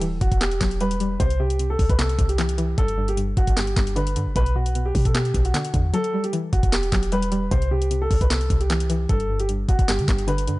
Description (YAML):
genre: hip hop, trap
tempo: 152 BPM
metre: 4/4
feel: half-time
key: E minor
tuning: A4 = 440 Hz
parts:
  - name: string-like resonator pluck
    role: accompaniment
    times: 0.0-10.6 s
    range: G2 to G3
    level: -28 LUFS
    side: left 1 dB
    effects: chorus, low-pass filter
  - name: clean 808-style bass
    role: bass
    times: 0.0-10.6 s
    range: D1 to D3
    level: -23 LUFS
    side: equal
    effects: none
  - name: trap drum kit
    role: drums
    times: 0.0-10.6 s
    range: handclaps, hi-hat, kick drum, snare drum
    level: -23 LUFS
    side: equal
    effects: none
  - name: dark concert grand piano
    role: melody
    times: 0.2-10.6 s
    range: F#4 to C5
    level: -27 LUFS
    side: equal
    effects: low-pass filter, tape echo
room: little or no reverb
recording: nothing above 10.7 kHz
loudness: -19 LUFS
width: side -19 dB against mid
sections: 0.0-10.6 A section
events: kick muted 5.9-6.3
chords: 0.0 Emadd9; 1.2 C; 2.8 G; 4.4 Bm; 5.9 Emadd9; 7.5 C; 9.1 G